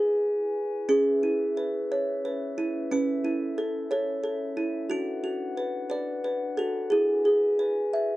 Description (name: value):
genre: children's music, lullaby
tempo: 59 BPM (dotted quarters)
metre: 6/8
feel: rubato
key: A major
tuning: A4 = 440 Hz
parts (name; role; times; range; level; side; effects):
- music box; melody; 0.0-8.2 s; C#4 to E5; -25 LUFS; right 1 dB; none
- glass harmonica; sustained chords; 0.0-8.2 s; C#4 to G#5; -36 LUFS; left 5 dB; none
room: light reverb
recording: dark, warm production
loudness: -25 LUFS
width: side -17 dB against mid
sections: 0.0-8.2 A section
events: none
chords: 0.0 E; 0.9 C#m7; 2.9 A/C#; 4.9 D6; 6.9 E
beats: | 0.89 1.91 | 2.92 3.91 | 4.89 5.89 | 6.91 7.93